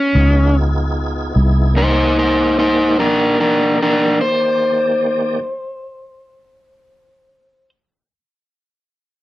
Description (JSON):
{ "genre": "slow blues", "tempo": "49 BPM (dotted quarters)", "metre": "12/8", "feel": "straight", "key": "C minor", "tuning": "A4 = 444 Hz", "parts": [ { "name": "crunchy overdriven guitar", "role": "melody", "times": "0.0-7.7 s", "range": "Db4 to C5", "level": "-15 LUFS", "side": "equal", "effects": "none" }, { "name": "tonewheel organ", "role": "sustained chords", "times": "0.1-5.4 s", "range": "Eb3 to D5", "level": "-22 LUFS", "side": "right 1 dB", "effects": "slow rotary speaker, overdrive, chorus vibrato" }, { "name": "vintage muted fingered electric bass", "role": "bass", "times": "0.1-5.0 s", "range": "C2 to Db2", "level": "-15 LUFS", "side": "equal", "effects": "none" } ], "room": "moderate small room reverb, RT60 0.5 s", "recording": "dark, warm production", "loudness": "-13 LUFS", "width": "side -16 dB against mid", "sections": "0.0-1.4 A section; 1.4-6.2 B section", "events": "slowing down 0.0-1.4; stop 0.0", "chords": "0.2 Db7; 1.4 Cm9", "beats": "0.16 | 1.35 2.57 3.79 5.01" }